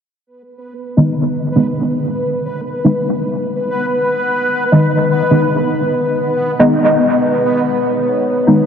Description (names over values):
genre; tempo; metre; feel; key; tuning
techno; 128 BPM; 4/4; straight; G# minor; A4 = 440 Hz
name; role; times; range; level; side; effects
deep dark ambient pad; sustained chords; 2.4-8.7 s; B3 to D#5; -32 LUFS; right 2 dB; chorus, built-in reverb
bubbling stepped-filter texture; texture; 0.7-8.7 s; B3 to C#5; -18 LUFS; left 1 dB; chorus, built-in reverb
deep mellow chord stab; stabs; 1.0-8.6 s; D#3 to D#4; -14 LUFS; equal; chorus, phaser, dub echo
room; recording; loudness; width
wet huge ambient reverb, RT60 4.9 s; dreamy mix soaked in reverb; -13 LUFS; side -7 dB against mid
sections
0.3-8.7 A section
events
filter sweep on synth stab 0.3-8.7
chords
0.3 G#m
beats
| 0.27 0.73 1.20 1.67 | 2.14 2.61 3.08 3.55 | 4.02 4.49 4.95 5.42 | 5.89 6.36 6.83 7.30 | 7.77 8.23